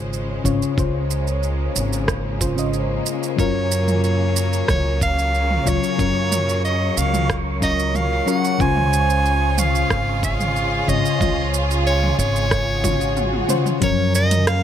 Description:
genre	sunset chillout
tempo	92 BPM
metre	4/4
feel	straight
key	Db major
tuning	A4 = 440 Hz
part	mellow FM electric piano	accompaniment	0.0-14.6 s	Db3 to Eb5	-23 LUFS	moving between left 8 dB and right 1 dB	chorus, auto-pan, ping-pong delay
part	clear symphonic string section	sustained chords	0.0-14.6 s	Db3 to C5	-28 LUFS	equal	none
part	upright bass	bass	0.0-14.6 s	Ab1 to Gb2	-22 LUFS	equal	none
part	deep house drum kit	drums	0.1-14.6 s	hi-hat, rim click, shaker, toms	-25 LUFS	right 3 dB	overdrive
part	electronic kick drum	drums	0.5-14.0 s	none	-24 LUFS	equal	overdrive
part	bright soprano saxophone	melody	3.4-14.6 s	Db5 to Ab5	-22 LUFS	right 1 dB	ping-pong delay
part	wind-like tuned noise texture	texture	4.6-13.8 s	Db5	-32 LUFS	right 5 dB	built-in reverb
part	swell	sound effects	12.8-13.8 s	none	-28 LUFS	equal	none
room	light reverb, digital ambience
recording	none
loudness	-17 LUFS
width	side -10 dB against mid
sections	0.0-13.8 A section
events	swell 12.8-13.8; drum fill 12.8-13.8; kick drops out 13.2-13.8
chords	0.0 Dbmaj7; 3.4 Gbmaj7; 8.6 Dbmaj7; 13.8 Gbmaj7

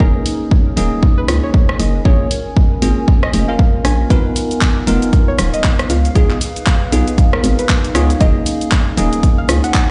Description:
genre	deep house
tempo	117 BPM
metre	4/4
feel	swing 59% on 16ths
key	unclear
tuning	A4 = 440 Hz
part	soft round pluck	melody	0.0-9.9 s	G#4 to G#5	-28 LUFS	equal	subtle chorus, tape echo
part	bell-like tine electric piano	stabs	0.0-9.9 s	A#3 to A#4	-23 LUFS	equal	sidechain pumping, dub echo
part	hollow knocking FM bass	bass	0.0-9.6 s	D#1 to C#2	-18 LUFS	equal	sidechain pumping
part	electronic kick drum	drums	0.0-9.9 s	none	-15 LUFS	equal	none
part	warbly tape-like pad	texture	0.0-9.9 s	B3 to G#5	-29 LUFS	equal	chorus, built-in reverb, sidechain pumping
part	house drum kit	drums	0.3-9.9 s	handclaps, hi-hat, rim click, shaker	-23 LUFS	equal	none
room	light reverb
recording	played on a big sound system in a bare room, large studio reverb, nothing above 10.3 kHz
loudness	-14 LUFS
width	mono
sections	0.0-9.9 A section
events	none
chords	0.0 F#69; 2.1 A#m7; 4.1 G#m69; 5.9 C#9; 8.2 F#69

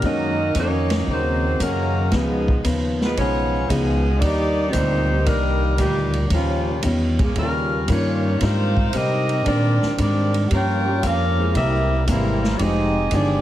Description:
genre	jazz, big band swing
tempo	115 BPM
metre	4/4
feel	swing 68% on 8ths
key	Eb major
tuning	A4 = 437 Hz
part	warm saxophone section	melody	0.0-13.4 s	F3 to G5	-24 LUFS	left 1 dB	none
part	warm trombone section	second line	0.0-13.4 s	Bb2 to G4	-25 LUFS	right 3 dB	none
part	picked acoustic archtop guitar	accompaniment	0.0-13.4 s	Gb2 to G4	-28 LUFS	left 2 dB	none
part	warm concert grand piano	accompaniment	0.0-12.9 s	Eb3 to Ab4	-27 LUFS	left 2 dB	none
part	upright bass	bass	0.0-13.4 s	F1 to C3	-22 LUFS	equal	none
part	swinging big-band drum kit	drums	0.0-13.3 s	hi-hat, kick drum, ride cymbal, snare drum	-27 LUFS	equal	none
room	light reverb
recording	heavily compressed radio sound, multiband compression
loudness	-18 LUFS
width	side -13 dB against mid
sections	0.0-13.4 A section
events	none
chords	0.0 Gb6; 2.1 Db9; 4.2 Ebmaj7; 6.3 Eb9; 8.4 Abmaj9#11; 10.5 Gm7b5; 11.5 C7b13; 12.6 Fm9

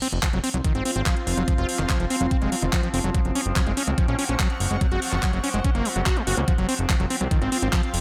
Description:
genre	psychedelic trance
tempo	144 BPM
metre	4/4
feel	straight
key	unclear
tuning	A4 = 440 Hz
part	overtone-sweeping drone	sustained chords	0.8-8.0 s	F3 to C4	-35 LUFS	equal	chorus, built-in reverb, phaser, sidechain pumping
part	overdriven acid bass	riff	0.0-7.8 s	Eb3 to Gb4	-30 LUFS	equal	distortion, sidechain pumping, delay
part	garage drum kit	drums	0.0-8.0 s	handclaps, hi-hat	-30 LUFS	equal	none
part	granular cloud pad	texture	0.6-8.0 s	C4 to Db6	-35 LUFS	equal	built-in reverb, sidechain pumping
part	fat analog bass	bass	0.1-8.0 s	F1 to Db2	-28 LUFS	equal	none
part	electronic kick drum	drums	0.2-7.8 s	none	-26 LUFS	equal	none
room	light reverb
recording	none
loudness	-23 LUFS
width	mono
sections	0.0-8.0 A section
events	none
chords	0.0 F5; 3.1 Gb5; 6.5 F5

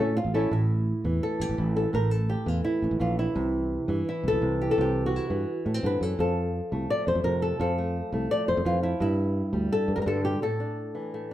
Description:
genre	flamenco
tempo	170 BPM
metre	4/4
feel	straight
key	unclear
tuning	A4 = 440 Hz
part	flamenco guitar	melody	0.0-11.3 s	G2 to D5	-26 LUFS	equal	none
part	sustaining fretless electric bass	bass	0.0-10.3 s	A1 to A2	-29 LUFS	equal	none
room	moderate studio reverb, RT60 0.7 s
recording	band playing live in one room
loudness	-24 LUFS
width	side -13 dB against mid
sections	0.5-11.3 A section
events	break 10.4-11.3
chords	0.0 A; 0.5 A5; 3.4 C; 6.2 F; 9.0 G5; 10.4 Asus4

